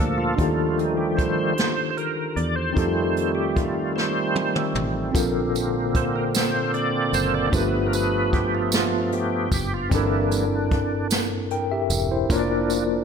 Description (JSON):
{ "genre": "slow gospel", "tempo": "50 BPM (dotted quarters)", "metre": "6/8", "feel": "straight", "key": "Bb major", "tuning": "A4 = 441 Hz", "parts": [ { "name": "tine electric piano", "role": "accompaniment", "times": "0.0-13.0 s", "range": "G2 to G5", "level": "-24 LUFS", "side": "left 2 dB", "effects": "fast stereo tremolo" }, { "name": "bright tonewheel organ", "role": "sustained chords", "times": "0.0-12.8 s", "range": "D3 to D5", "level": "-24 LUFS", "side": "right 3 dB", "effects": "fast rotary speaker, overdrive, chorus vibrato" }, { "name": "fingered electric bass", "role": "bass", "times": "0.0-13.0 s", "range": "E1 to F2", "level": "-29 LUFS", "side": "equal", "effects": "none" }, { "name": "jazz brush drum kit", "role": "drums", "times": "0.4-12.9 s", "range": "hi-hat, kick drum, snare drum, toms", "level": "-26 LUFS", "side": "equal", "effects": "none" }, { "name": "tambourine", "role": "percussion", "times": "5.2-13.0 s", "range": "none", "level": "-32 LUFS", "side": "right 8 dB", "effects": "none" } ], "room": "moderate concert hall reverb, RT60 1.8 s", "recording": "none", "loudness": "-20 LUFS", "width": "side -6 dB against mid", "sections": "0.0-13.0 A section", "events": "tonewheel organ solo 0.0-13.0; drum fill 4.0-5.2", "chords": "0.4 Ebmaj9#11; 2.8 F9; 5.2 Bbmaj9; 7.5 G7; 9.9 C13/G; 12.3 Bb/F", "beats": "| 0.39 1.58 | 2.77 3.96 | 5.15 6.34 | 7.53 8.72 | 9.92 11.11 | 12.30" }